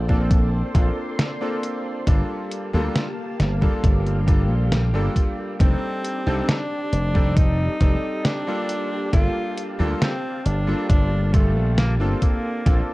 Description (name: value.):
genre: vaporwave.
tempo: 68 BPM.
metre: 4/4.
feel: straight.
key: G minor.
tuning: A4 = 440 Hz.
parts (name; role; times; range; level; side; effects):
soft string machine; sustained chords; 0.0-12.9 s; Bb3 to C6; -33 LUFS; equal; ensemble chorus.
slap bass; bass; 0.0-12.8 s; F1 to D2; -21 LUFS; equal; none.
bright electric grand piano; accompaniment; 0.1-12.9 s; Bb2 to D5; -28 LUFS; equal; analog chorus.
electronic kick drum; drums; 0.1-12.8 s; none; -18 LUFS; equal; small room reverb.
detuned 8-bit digital drum machine; drums; 0.3-12.8 s; hi-hat, snare drum; -24 LUFS; equal; small room reverb.
clear tenor saxophone; melody; 5.6-12.9 s; A3 to F4; -27 LUFS; equal; tape echo.
room: little or no reverb.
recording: dark, warm production, cassette tape.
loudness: -19 LUFS.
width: side -20 dB against mid.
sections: 0.0-12.9 A section.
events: none.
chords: 0.0 Bbmaj9; 2.1 Gm9; 5.6 F13; 8.7 Gm9; 12.2 Bbmaj9.